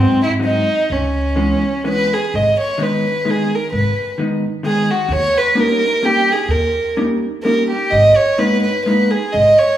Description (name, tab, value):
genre	musette waltz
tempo	128 BPM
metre	3/4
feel	swing 54% on 8ths, rubato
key	G# minor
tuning	A4 = 440 Hz
part	warm violin	melody	0.0-9.8 s	B#3 to D#5	-15 LUFS	right 1 dB	none
part	vintage hollow-body jazz guitar	accompaniment	0.0-9.1 s	D#3 to D#4	-19 LUFS	equal	none
part	upright bass	bass	0.0-9.5 s	G#1 to G#2	-20 LUFS	equal	none
room	wet recital hall reverb, RT60 1.6 s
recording	recorded in a church or concert hall, small room ambience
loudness	-14 LUFS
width	side -12 dB against mid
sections	0.0-2.3 A section; 2.3-9.8 B section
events	none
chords	0.0 G#7; 0.9 C#m7; 2.3 G#m; 5.1 D#7; 7.9 G#madd9